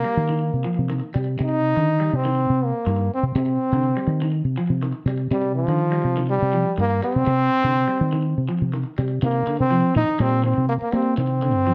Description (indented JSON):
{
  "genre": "afrobeat",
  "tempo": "123 BPM",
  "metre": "4/4",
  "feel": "straight",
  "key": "C minor",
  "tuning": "A4 = 439 Hz",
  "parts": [
    { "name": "warm trombone", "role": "melody", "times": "0.0-11.7 s", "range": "F3 to Eb4", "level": "-24 LUFS", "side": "equal", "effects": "slapback echo, plate reverb" },
    { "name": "electric guitar at the edge of break-up", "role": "arpeggios", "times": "0.0-11.7 s", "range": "C3 to G3", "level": "-31 LUFS", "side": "equal", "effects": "phaser, slapback echo" },
    { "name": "fingered electric bass", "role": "bass", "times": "0.0-11.7 s", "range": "G2 to Bb3", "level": "-24 LUFS", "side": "equal", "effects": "none" }
  ],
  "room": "moderate studio reverb, RT60 0.8 s",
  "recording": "none",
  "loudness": "-21 LUFS",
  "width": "mono",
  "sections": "0.0-9.2 A section; 9.2-11.7 B section",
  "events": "none",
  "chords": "0.0 Cm; 9.2 Cm9",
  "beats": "0.42 0.91 | 1.40 1.89 2.38 2.87 | 3.35 3.85 4.33 4.82 | 5.31 5.80 6.29 6.78 | 7.27 7.76 8.25 8.74 | 9.23 9.72 10.21 10.70 | 11.18 11.67"
}